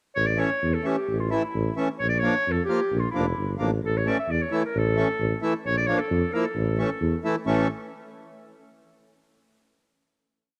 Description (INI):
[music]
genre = klezmer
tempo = 132 BPM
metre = 2/4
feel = straight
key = A phrygian dominant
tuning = A4 = 440 Hz
[part]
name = bright clarinet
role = melody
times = 0.2-7.7 s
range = E4 to E5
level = -30 LUFS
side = equal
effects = cassette tape
[part]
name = mellow tuba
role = bass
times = 0.2-7.7 s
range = F1 to F2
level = -28 LUFS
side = equal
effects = none
[part]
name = accordion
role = accompaniment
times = 0.4-7.7 s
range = E3 to F4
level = -30 LUFS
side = equal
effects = cassette tape
[sound]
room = light reverb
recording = home recording on cassette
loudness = -25 LUFS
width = mono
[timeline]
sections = 0.2-7.5 A section; 7.5-8.4 final chord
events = none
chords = 0.2 A; 2.0 Bb; 3.8 A; 5.6 Bb; 6.6 A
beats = | 0.16 0.62 | 1.08 1.54 | 2.00 2.46 | 2.91 3.37 | 3.83 4.28 | 4.74 5.19 | 5.65 6.10 | 6.56 7.01 | 7.46